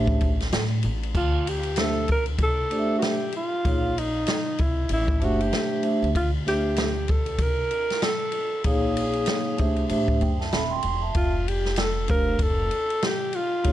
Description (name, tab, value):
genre	hip hop, jazz-hop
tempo	96 BPM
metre	4/4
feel	swing 59% on 16ths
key	D minor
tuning	A4 = 440 Hz
part	vibraphone with soft mallets	accompaniment	0.0-13.7 s	A3 to C6	-27 LUFS	right 2 dB	none
part	upright bass	bass	0.0-13.7 s	Eb1 to A2	-28 LUFS	equal	none
part	open jazz drum kit	drums	0.1-13.7 s	crash cymbal, hi-hat, kick drum, ride cymbal, snare drum	-26 LUFS	equal	vintage 12-bit sampler grit
part	breathy alto saxophone	melody	1.2-13.7 s	Eb4 to Bb4	-27 LUFS	equal	tape echo
room	studio ambience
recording	none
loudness	-22 LUFS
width	side -13 dB against mid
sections	0.0-1.1 A section; 1.1-13.7 B section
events	none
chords	0.0 Am7; 1.1 Dsus2; 3.6 Bbm9; 4.9 Am7; 6.2 Dsus2; 8.7 Bbm9; 9.9 Am7; 11.2 F